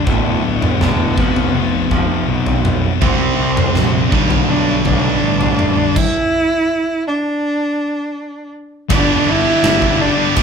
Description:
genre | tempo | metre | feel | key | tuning
quiet-loud alternative rock | 82 BPM | 4/4 | straight | unclear | A4 = 440 Hz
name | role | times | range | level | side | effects
rich cello | melody | 0.0-10.4 s | B3 to E4 | -18 LUFS | right 1 dB | none
twangy electric guitar | arpeggios | 0.0-3.0 s | D2 to F3 | -24 LUFS | right 3 dB | none
thick fuzz guitar | riff | 0.0-10.4 s | D2 to G4 | -19 LUFS | left 8 dB | distortion
fuzz picked electric bass | bass | 0.1-10.4 s | D1 to C2 | -21 LUFS | right 1 dB | overdrive
huge arena drum kit | drums | 0.1-10.4 s | crash cymbal, kick drum, ride cymbal, snare drum, toms | -19 LUFS | right 1 dB | none
distorted electric guitar | riff | 3.0-10.4 s | G2 to G4 | -19 LUFS | right 11 dB | overdrive
room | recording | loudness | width
light reverb | band playing live in one room | -13 LUFS | side -6 dB against mid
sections
0.0-8.9 A section; 8.9-10.4 B section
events
stop 6.0-8.9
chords
0.1 D5; 1.2 F5; 3.0 C5; 4.1 G/B; 6.0 N.C.; 8.9 G

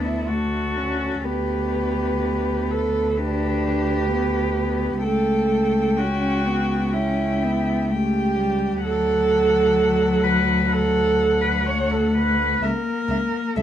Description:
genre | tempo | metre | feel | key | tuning
classical, lyrical piece for cello ensemble | 63 BPM | 4/4 | rubato | D major | A4 = 440 Hz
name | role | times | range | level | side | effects
warm cello | melody | 0.0-13.6 s | A4 to G5 | -30 LUFS | left 7 dB | none
warm cello | second line | 0.0-13.6 s | E4 to C#5 | -22 LUFS | right 3 dB | none
warm cello | accompaniment | 0.0-13.6 s | F#3 to D4 | -25 LUFS | left 4 dB | none
warm cello | bass | 0.0-13.6 s | C#2 to D2 | -25 LUFS | right 1 dB | none
room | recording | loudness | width
moderate studio reverb, RT60 0.8 s | dark, warm production | -19 LUFS | side -10 dB against mid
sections
0.0-13.6 A section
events
none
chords
0.0 D; 1.2 G/D; 5.0 A7/C#; 8.8 D; 12.6 C#m6

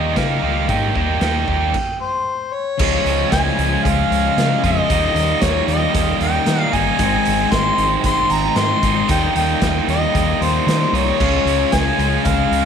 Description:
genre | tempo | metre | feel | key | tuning
classic rock | 114 BPM | 4/4 | straight | unclear | A4 = 439 Hz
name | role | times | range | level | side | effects
mellow harmonica | melody | 0.0-12.7 s | C5 to C6 | -20 LUFS | left 3 dB | slapback echo
crunchy overdriven guitar | riff | 0.0-12.7 s | Ab2 to F4 | -23 LUFS | left 14 dB | none
tight distorted guitar | riff | 0.0-12.7 s | Ab2 to G4 | -21 LUFS | right 15 dB | distortion
fingered electric bass | bass | 0.0-12.7 s | G1 to Eb3 | -22 LUFS | equal | none
raw garage drum kit | drums | 0.2-12.6 s | crash cymbal, hi-hat, kick drum, snare drum | -23 LUFS | equal | none
bright tonewheel organ | sustained chords | 2.8-12.7 s | Bb3 to Eb5 | -33 LUFS | equal | none
room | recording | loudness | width
moderate spring reverb, RT60 2.5 s | 1960s-style stereo with parts hard left and right | -15 LUFS | side -7 dB against mid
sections
0.0-2.8 A section; 2.8-12.7 B section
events
stop 1.7-2.8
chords
0.0 Eb; 2.8 Dbadd9; 4.9 Eb; 7.0 Ab; 9.1 Eb; 11.2 Dbadd9

